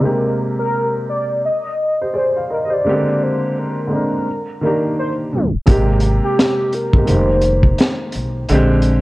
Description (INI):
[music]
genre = lo-fi hip hop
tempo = 85 BPM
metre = 4/4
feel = swing 59% on 16ths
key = unclear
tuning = A4 = 440 Hz
[part]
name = warm velvety synth lead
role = melody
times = 0.0-7.8 s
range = G4 to Eb5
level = -20 LUFS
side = equal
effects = chorus, low-pass filter, tape echo
[part]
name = dark upright piano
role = accompaniment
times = 0.0-9.0 s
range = C3 to F5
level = -18 LUFS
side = equal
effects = cassette tape, low-pass filter
[part]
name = upright bass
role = bass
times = 5.7-9.0 s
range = F1 to Cb2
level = -17 LUFS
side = equal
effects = tube saturation
[part]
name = crunchy breakbeat drum kit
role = drums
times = 5.7-9.0 s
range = hi-hat, kick drum, snare drum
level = -15 LUFS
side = equal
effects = none
[sound]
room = light reverb, small room ambience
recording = worn, warbling old tape, cassette tape, warbly pitch drift, tape stop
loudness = -15 LUFS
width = side -19 dB against mid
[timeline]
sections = 0.0-5.7 A section; 5.7-9.0 B section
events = filter sweep 0.0-5.7; tape stop 5.3-5.7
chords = 0.0 Abmaj9; 1.4 N.C.; 2.8 Bb13; 4.3 Ebmaj7; 5.7 Abmaj9; 7.1 Fm11; 8.5 Bb13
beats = | 0.03 0.73 1.44 2.14 | 2.85 3.56 4.26 4.97 | 5.67 6.38 7.08 7.79 | 8.50